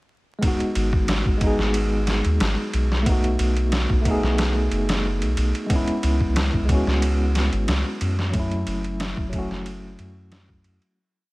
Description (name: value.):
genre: trip hop.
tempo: 91 BPM.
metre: 4/4.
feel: swing 53% on 16ths.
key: G# phrygian.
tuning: A4 = 440 Hz.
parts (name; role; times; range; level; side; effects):
tine electric piano; accompaniment; 0.4-11.0 s; F#3 to G#4; -25 LUFS; equal; tremolo, vintage 12-bit sampler grit, tape echo.
trip hop sampler-style drum kit; drums; 0.4-11.0 s; kick drum, ride cymbal, snare drum; -24 LUFS; equal; none.
round analog bass; bass; 0.8-10.8 s; F#1 to F#2; -23 LUFS; equal; none.
room: little or no reverb.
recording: vinyl crackle.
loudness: -20 LUFS.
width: side -21 dB against mid.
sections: 0.4-11.0 groove.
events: fade-out 7.5-11.0.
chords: 0.4 G#m7; 3.1 B7; 5.7 C#m7; 8.3 F#m7.